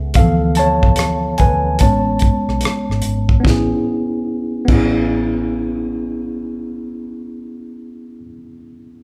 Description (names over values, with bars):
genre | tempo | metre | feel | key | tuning
R&B, neo-soul | 73 BPM | 4/4 | swing 62% on 16ths | A major | A4 = 440 Hz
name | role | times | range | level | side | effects
tine electric piano | accompaniment | 0.0-9.0 s | E3 to A5 | -21 LUFS | equal | overdrive
vintage muted fingered electric bass | bass | 0.0-8.2 s | G#1 to D2 | -25 LUFS | equal | none
damped 70s drum kit | drums | 0.1-4.9 s | crash cymbal, hi-hat, kick drum, rim click, snare drum | -18 LUFS | equal | none
room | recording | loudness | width
moderate large studio reverb, RT60 1.4 s | band playing live in one room | -17 LUFS | mono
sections
0.0-3.4 A section; 3.4-6.7 B section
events
tine electric piano solo 0.0-3.4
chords
0.2 Dm6; 1.8 Amaj9